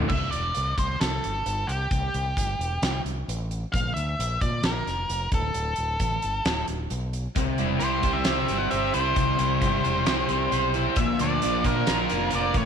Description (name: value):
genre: classic rock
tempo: 132 BPM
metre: 4/4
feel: straight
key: unclear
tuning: A4 = 445 Hz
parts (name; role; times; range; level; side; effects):
- tonewheel organ; sustained chords; 0.0-0.1, 7.4-12.7 s; G3 to D5; -38 LUFS; equal; none
- cranked stack guitar; riff; 0.0-0.1, 7.4-12.7 s; A2 to C5; -27 LUFS; left 12 dB; overdrive
- crunchy overdriven guitar; riff; 0.0-0.1, 7.4-12.7 s; A2 to C5; -28 LUFS; right 14 dB; spring reverb
- growling fingered electric bass; bass; 0.0-12.7 s; D1 to Bb2; -30 LUFS; equal; overdrive
- octave-fuzz lead guitar; melody; 0.1-12.7 s; G4 to F#5; -28 LUFS; equal; distortion, slapback echo
- big rock drum kit; drums; 0.1-12.7 s; crash cymbal, hi-hat, kick drum, snare drum; -29 LUFS; equal; none
room: light reverb, studio reverb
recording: 1960s-style stereo with parts hard left and right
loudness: -23 LUFS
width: side -7 dB against mid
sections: 0.1-12.7 A section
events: half time 0.1-12.7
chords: 0.1 C5; 3.7 Bb5; 5.3 D5; 7.4 C; 11.0 Bb